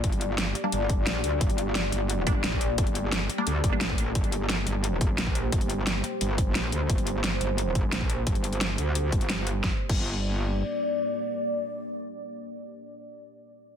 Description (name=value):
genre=dark technical drum and bass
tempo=175 BPM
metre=4/4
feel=straight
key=G minor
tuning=A4 = 439 Hz
part: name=deep dark ambient pad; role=sustained chords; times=0.0-12.6 s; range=Bb3 to D5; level=-32 LUFS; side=left 1 dB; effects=chorus, built-in reverb, sidechain pumping
part: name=metallic wobble bass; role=bass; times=0.0-10.6 s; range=G1 to D2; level=-29 LUFS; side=equal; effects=distortion, chorus, overdrive, sidechain pumping
part: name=dubstep drum kit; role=drums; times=0.0-10.0 s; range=crash cymbal, hi-hat, snare drum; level=-30 LUFS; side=equal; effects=none
part: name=electronic kick drum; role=drums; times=0.0-10.0 s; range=none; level=-27 LUFS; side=equal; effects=none
part: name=filtered dub chord stab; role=stabs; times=0.6-4.3 s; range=G3 to D4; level=-33 LUFS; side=equal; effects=phaser, dub echo
room=light reverb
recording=dense, heavily limited modern master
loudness=-24 LUFS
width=side -8 dB against mid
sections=0.0-9.6 A section; 9.6-12.4 B section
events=none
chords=0.0 Gm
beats=| 0.04 0.38 0.72 1.07 | 1.41 1.75 2.10 2.44 | 2.78 3.12 3.47 3.81 | 4.15 4.50 4.84 5.18 | 5.52 5.87 6.21 6.55 | 6.89 7.24 7.58 7.92 | 8.27 8.61 8.95 9.29 | 9.64 9.98 10.32 10.67 | 11.01 11.35 11.70 12.04